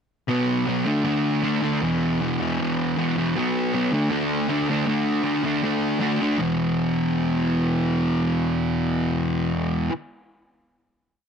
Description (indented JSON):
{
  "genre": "rock",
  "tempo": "157 BPM",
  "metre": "4/4",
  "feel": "straight",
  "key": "unclear",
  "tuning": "A4 = 440 Hz",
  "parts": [
    { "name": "fuzz guitar", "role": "solo", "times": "0.3-9.9 s", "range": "E2 to D4", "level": "-21 LUFS", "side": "equal", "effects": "distortion" }
  ],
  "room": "light reverb",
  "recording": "none",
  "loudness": "-21 LUFS",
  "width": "side -7 dB against mid",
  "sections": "0.3-6.4 pre-chorus; 6.4-9.5 final chord",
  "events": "none",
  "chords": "0.3 B5; 0.8 D5; 1.8 E5; 3.3 B5; 3.9 D5; 6.4 E5",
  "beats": "| 0.27 0.66 1.04 1.43 | 1.81 2.19 2.58 2.96 | 3.34 3.72 4.10 4.48 | 4.87 5.25 5.63 6.01 | 6.39 6.78 7.16 7.54 | 7.93 8.31 8.70 9.08"
}